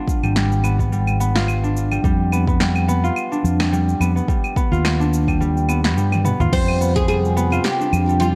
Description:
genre	organic downtempo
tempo	107 BPM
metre	4/4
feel	swing 55% on 16ths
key	unclear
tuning	A4 = 440 Hz
part	concert harp	arpeggios	0.0-8.4 s	G3 to F4	-24 LUFS	equal	digital delay
part	deep house drum kit	drums	0.1-8.3 s	cabasa, claves, crash cymbal, snare drum, toms	-27 LUFS	equal	none
part	electronic kick drum	drums	0.1-7.1 s	none	-23 LUFS	equal	none
part	fretless electric bass	bass	0.2-8.4 s	Ab1 to G2	-21 LUFS	equal	none
part	oud	melody	6.5-8.4 s	F4 to C5	-24 LUFS	equal	digital delay
part	warbly tape-like pad	sustained chords	7.1-8.4 s	C3 to G5	-31 LUFS	equal	none
room	light reverb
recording	dark, warm production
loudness	-19 LUFS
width	mono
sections	0.0-6.5 A section; 6.5-8.4 B section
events	drum fill 6.1-6.5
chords	0.0 Abmmaj7; 2.0 G7/F; 4.3 Ebmaj7#5; 6.5 Fmadd9

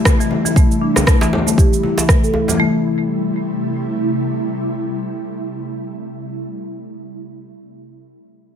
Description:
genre	afro house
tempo	118 BPM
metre	4/4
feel	swing 57% on 16ths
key	A minor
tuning	A4 = 440 Hz
part	ethereal airy pad	sustained chords	0.0-6.3 s	C3 to E4	-22 LUFS	equal	ensemble chorus, built-in reverb, sidechain pumping
part	marimba with hard mallets	arpeggios	0.1-2.8 s	E3 to A4	-19 LUFS	left 2 dB	sidechain pumping, low-pass filter, tape echo
part	electronic kick drum	drums	0.1-2.2 s	none	-13 LUFS	equal	none
part	electronic rim click and shaker	drums	0.1-2.6 s	none	-20 LUFS	right 2 dB	none
part	congas	percussion	0.1-2.6 s	none	-25 LUFS	left 2 dB	none
part	djembe	percussion	1.0-2.5 s	none	-24 LUFS	right 1 dB	none
room	light reverb, digital ambience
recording	none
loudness	-15 LUFS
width	side -8 dB against mid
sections	0.0-2.6 A section; 2.6-6.7 B section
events	filter sweep on marimba 0.0-2.6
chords	0.0 Am7

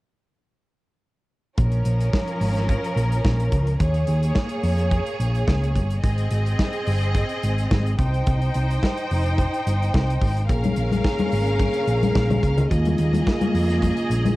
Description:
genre	disco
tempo	108 BPM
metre	4/4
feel	straight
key	Bb dorian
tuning	A4 = 440 Hz
part	clear studio string section	second line	1.6-14.4 s	F3 to G5	-27 LUFS	equal	cassette tape
part	hollow-body short-scale picked electric bass	bass	1.6-14.3 s	F1 to F2	-21 LUFS	equal	none
part	modern studio drum kit	drums	1.6-14.4 s	hi-hat, kick drum, snare drum	-25 LUFS	equal	cassette tape
part	dark French horn section	sustained chords	10.5-14.4 s	Db3 to Ab4	-26 LUFS	equal	cassette tape
part	congas	percussion	10.7-14.4 s	none	-25 LUFS	left 4 dB	none
room	studio reverb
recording	home recording on cassette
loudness	-19 LUFS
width	side -18 dB against mid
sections	1.6-14.4 A section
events	none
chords	1.6 Bbm7; 3.8 Eb9sus4; 6.0 Abmaj7; 8.0 Cm; 10.5 Bbm7; 12.7 Eb9sus4

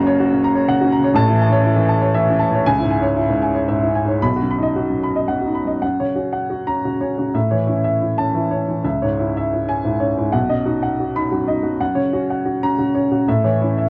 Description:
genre	neoclassical minimalist piano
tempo	121 BPM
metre	3/4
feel	rubato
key	unclear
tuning	A4 = 442 Hz
part	warm upright piano	solo	0.0-13.9 s	F#1 to B5	-18 LUFS	equal	none
room	light reverb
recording	worn, warbling old tape, cassette tape, warbly pitch drift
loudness	-19 LUFS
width	mono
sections	0.0-5.8 A section; 5.8-13.9 B section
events	none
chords	0.0 F#; 1.2 A; 2.6 C#m; 4.2 B; 5.8 F#; 7.3 A; 8.8 C#m; 10.3 B; 11.8 F#; 13.3 A

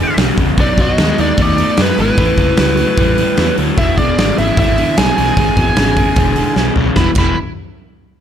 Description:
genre	blues rock power trio and southern rock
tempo	150 BPM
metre	4/4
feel	straight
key	E mixolydian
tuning	A4 = 443 Hz
part	biting lead guitar	melody	0.0-7.4 s	B4 to B5	-18 LUFS	right 1 dB	overdrive, slapback echo
part	bluesy overdriven lead guitar	second line	0.0-7.4 s	D#4 to G#4	-24 LUFS	right 4 dB	distortion, slapback echo
part	crunchy overdriven guitar	riff	0.0-7.3 s	E2 to A3	-17 LUFS	left 1 dB	none
part	fuzz picked electric bass	bass	0.2-7.4 s	E1 to F#2	-18 LUFS	equal	overdrive
part	big rock drum kit	drums	0.2-7.3 s	crash cymbal, hi-hat, kick drum, snare drum, toms	-16 LUFS	equal	none
room	small room ambience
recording	none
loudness	-11 LUFS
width	side -9 dB against mid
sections	0.0-7.0 A section; 7.0-8.2 B section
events	drum fill 6.6-7.0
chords	0.0 E; 0.6 B; 2.2 A; 3.8 E; 7.0 E5

